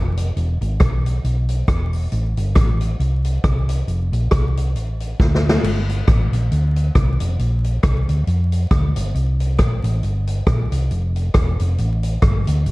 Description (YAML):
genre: ska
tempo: 136 BPM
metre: 4/4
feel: swing 57% on 8ths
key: unclear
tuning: A4 = 440 Hz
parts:
  - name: hollow-body short-scale fingered electric bass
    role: bass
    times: 0.0-12.7 s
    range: E1 to F2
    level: -18 LUFS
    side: equal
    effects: none
  - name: swinging big-band drum kit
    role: drums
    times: 0.2-12.7 s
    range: crash cymbal, hi-hat, kick drum, rim click, snare drum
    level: -20 LUFS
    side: equal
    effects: none
room: little or no reverb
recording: dark, warm production, vinyl crackle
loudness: -16 LUFS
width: side -21 dB against mid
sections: 0.0-5.6 A section; 5.6-12.7 B section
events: drum fill 5.2-5.6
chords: none